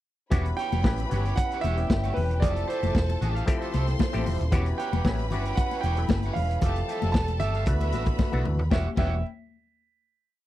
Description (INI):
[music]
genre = disco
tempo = 115 BPM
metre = 4/4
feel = straight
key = E dorian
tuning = A4 = 439 Hz
[part]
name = warm studio string section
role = second line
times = 0.3-9.2 s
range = C#4 to C6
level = -36 LUFS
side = left 1 dB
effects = none
[part]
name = auto-wah clav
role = accompaniment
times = 0.3-9.2 s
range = E3 to A4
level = -36 LUFS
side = left 3 dB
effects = none
[part]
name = electric guitar at the edge of break-up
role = accompaniment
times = 0.3-9.1 s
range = F#4 to G5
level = -38 LUFS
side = right 4 dB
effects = lush chorus
[part]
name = muted French horn section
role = sustained chords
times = 0.3-9.0 s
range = D3 to A4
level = -38 LUFS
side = left 3 dB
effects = none
[part]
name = hollow-body short-scale fingered electric bass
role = bass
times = 0.3-9.2 s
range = D#1 to D#2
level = -27 LUFS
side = equal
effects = none
[part]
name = vintage drum kit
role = drums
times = 0.3-9.1 s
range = crash cymbal, hi-hat, kick drum, snare drum, toms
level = -26 LUFS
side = equal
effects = none
[part]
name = congas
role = percussion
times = 0.3-9.2 s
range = none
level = -34 LUFS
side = left 7 dB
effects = none
[part]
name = clear grand piano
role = melody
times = 0.6-9.2 s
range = B4 to A5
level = -32 LUFS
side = right 5 dB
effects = none
[sound]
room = little or no reverb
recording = dry, close 1970s-style studio recording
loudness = -23 LUFS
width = side -14 dB against mid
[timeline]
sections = 0.3-8.7 verse; 8.7-10.5 final chord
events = drum fill 8.2-8.7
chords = 0.3 Em69; 2.4 Fmaj9; 4.5 Em69; 6.6 Fmaj9; 7.7 D69; 8.7 Em69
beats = | 0.32 0.84 1.37 1.90 | 2.42 2.95 3.47 4.00 | 4.52 5.05 5.57 6.09 | 6.62 7.14 7.66 8.18 | 8.71